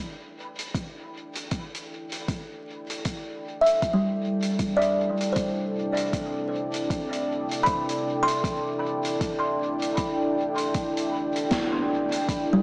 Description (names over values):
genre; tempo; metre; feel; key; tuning
ambient dub; 78 BPM; 4/4; swing 58% on 16ths; unclear; A4 = 440 Hz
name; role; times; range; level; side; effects
deep dark ambient pad; sustained chords; 0.0-12.6 s; C3 to G5; -28 LUFS; equal; chorus, built-in reverb
soft-mallet drum kit; drums; 0.6-12.5 s; hi-hat, snare drum; -34 LUFS; equal; small room ambience, dub echo
electronic kick drum; drums; 0.7-12.5 s; none; -30 LUFS; equal; overdrive, small room ambience
kalimba; arpeggios; 3.6-12.6 s; G3 to C6; -25 LUFS; equal; dub echo
room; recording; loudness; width
light reverb, studio reverb; echo-heavy mix, vinyl crackle, small speaker sound; -24 LUFS; side -29 dB against mid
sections
0.0-12.6 A section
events
fade-in on ambient pad 0.0-12.6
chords
0.0 G5; 3.8 Cadd9; 10.0 G5